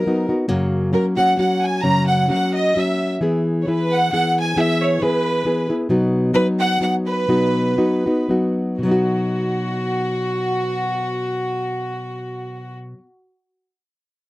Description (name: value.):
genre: mexican folk.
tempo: 112-137 BPM.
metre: 3/4.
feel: swing 54% on 8ths.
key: B major.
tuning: A4 = 441 Hz.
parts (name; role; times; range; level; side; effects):
clear chamber violin section; melody; 0.0-12.8 s; F#4 to A#5; -21 LUFS; right 1 dB; none.
nylon-string guitar; accompaniment; 0.0-13.1 s; F#2 to G#4; -19 LUFS; left 1 dB; none.
room: moderate booth ambience, RT60 0.3 s.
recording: dry, close 1970s-style studio recording.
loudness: -17 LUFS.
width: side -18 dB against mid.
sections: 0.0-8.8 A section; 8.8-12.0 B section.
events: slowing down 5.9-8.8.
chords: 0.0 B; 0.5 F#; 3.2 E; 5.9 B.